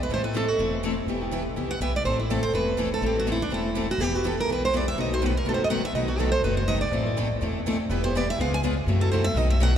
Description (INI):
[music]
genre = acoustic string swing (jazz manouche)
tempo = 246 BPM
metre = 4/4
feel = swing 55% on 8ths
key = E minor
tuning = A4 = 444 Hz
[part]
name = picked steel-string acoustic guitar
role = melody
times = 0.0-9.7 s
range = D4 to G#5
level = -27 LUFS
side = right 2 dB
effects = none
[part]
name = picked steel-string acoustic guitar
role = accompaniment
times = 0.1-9.7 s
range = B2 to A4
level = -29 LUFS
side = left 5 dB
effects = none
[part]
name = picked steel-string acoustic guitar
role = accompaniment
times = 0.1-9.7 s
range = B2 to B4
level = -33 LUFS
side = right 5 dB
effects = none
[part]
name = upright bass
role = bass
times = 0.1-9.7 s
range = E1 to F#2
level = -27 LUFS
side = equal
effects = none
[sound]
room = wet cathedral reverb, RT60 6.6 s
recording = recorded in a church or concert hall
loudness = -23 LUFS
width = side -9 dB against mid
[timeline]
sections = 0.0-9.8 A section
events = steel-string acoustic guitar solo 0.0-9.8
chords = 0.1 Am; 1.1 Em; 2.0 Am; 4.0 Em; 5.0 B7; 6.9 Am; 7.9 Em; 8.4 C#7; 8.9 F#m7b5